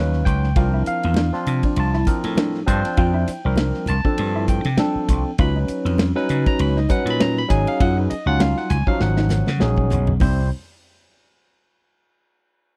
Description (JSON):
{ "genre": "electric jazz fusion", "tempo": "100 BPM", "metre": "4/4", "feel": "swing 56% on 16ths", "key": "unclear", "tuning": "A4 = 440 Hz", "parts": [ { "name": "barky tine electric piano", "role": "accompaniment", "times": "0.0-10.5 s", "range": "F3 to Cb6", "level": "-26 LUFS", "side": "equal", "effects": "overdrive, phaser" }, { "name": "mellow electric guitar", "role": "stabs", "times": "0.0-10.4 s", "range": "C4 to F4", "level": "-30 LUFS", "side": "equal", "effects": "lush chorus" }, { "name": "vintage slap bass", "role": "bass", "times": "0.0-10.5 s", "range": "Ab1 to Db3", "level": "-23 LUFS", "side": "equal", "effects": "none" }, { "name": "modern studio drum kit", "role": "drums", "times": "0.1-10.4 s", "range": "hi-hat, kick drum, ride cymbal, snare drum, toms", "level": "-24 LUFS", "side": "equal", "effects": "none" }, { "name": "congas", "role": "percussion", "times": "0.2-10.5 s", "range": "none", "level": "-32 LUFS", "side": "equal", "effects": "none" } ], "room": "little or no reverb", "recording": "dry, close 1970s-style studio recording", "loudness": "-20 LUFS", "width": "mono", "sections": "0.0-10.2 A section; 10.2-12.6 B section", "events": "drum fill 9.0-10.2", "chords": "0.0 Db9sus4; 0.6 C9sus4; 5.4 Db9sus4; 10.2 N.C.", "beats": "| 0.56 1.17 1.77 2.37 | 2.98 3.58 4.18 4.78 | 5.39 5.99 6.59 7.20 | 7.80 8.40 9.01 9.61 | 10.21" }